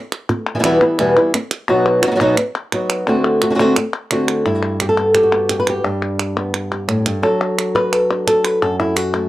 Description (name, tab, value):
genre	flamenco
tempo	173 BPM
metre	4/4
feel	straight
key	E harmonic minor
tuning	A4 = 440 Hz
part	palmas hand claps	percussion	0.1-9.3 s	none	-21 LUFS	equal	none
part	flamenco guitar	melody	0.3-9.3 s	E2 to B4	-15 LUFS	equal	none
room	moderate studio reverb, RT60 0.7 s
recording	dry, close 1970s-style studio recording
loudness	-14 LUFS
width	side -16 dB against mid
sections	0.0-4.5 A section; 4.5-9.3 B section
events	none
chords	0.0 Em; 1.7 B; 3.1 D7; 4.5 G; 7.2 D/F#